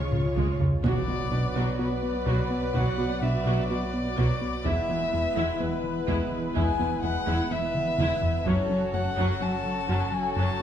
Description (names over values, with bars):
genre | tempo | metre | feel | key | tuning
cinematic, hybrid orchestral and electronic film score | 126 BPM | 4/4 | straight | B dorian | A4 = 441 Hz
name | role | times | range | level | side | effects
warm symphonic violin section | melody | 0.0-0.6 s | C#6 | -45 LUFS | equal | none
warm symphonic violin section | second line | 0.0-10.6 s | F#4 to D5 | -39 LUFS | equal | none
rich symphonic viola section | accompaniment | 0.0-10.6 s | F#3 to F#4 | -34 LUFS | right 1 dB | none
mellow French horn section | sustained chords | 0.0-0.6 s | none | barely audible | none | none
mellow trombone section | sustained chords | 0.0-0.6 s | C#3 to E#3 | -40 LUFS | right 2 dB | none
warm analog pad | sustained chords | 0.0-10.6 s | C#3 to C#5 | -33 LUFS | equal | chorus
soft round pluck | arpeggios | 0.0-10.5 s | C#3 to F#4 | -37 LUFS | right 5 dB | none
round analog bass | riff | 0.0-10.6 s | C#2 to B3 | -30 LUFS | left 1 dB | none
punchy sub bass | bass | 0.0-10.6 s | E1 to C#2 | -37 LUFS | right 1 dB | none
warm symphonic cello section | bass | 0.0-10.4 s | E2 to C#3 | -34 LUFS | right 2 dB | none
taiko ensemble | drums | 0.1-9.4 s | none | -32 LUFS | equal | none
warm violin | melody | 0.8-10.6 s | B4 to A5 | -30 LUFS | left 3 dB | tape echo
impact | sound effects | 0.8-2.7 s | none | -35 LUFS | right 1 dB | none
room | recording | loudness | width
moderate scoring stage reverb, RT60 1.6 s | small room ambience | -24 LUFS | side -9 dB against mid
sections
0.8-10.6 A section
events
drum fill 0.1-0.8, 7.7-8.5; impact 0.8-2.7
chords
0.0 C#; 0.8 Bm; 4.6 E; 8.5 F#m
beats
0.36 | 0.84 1.31 1.79 2.27 | 2.74 3.22 3.70 4.17 | 4.65 5.12 5.60 6.08 | 6.55 7.03 7.50 7.98 | 8.46 8.93 9.41 9.89 | 10.36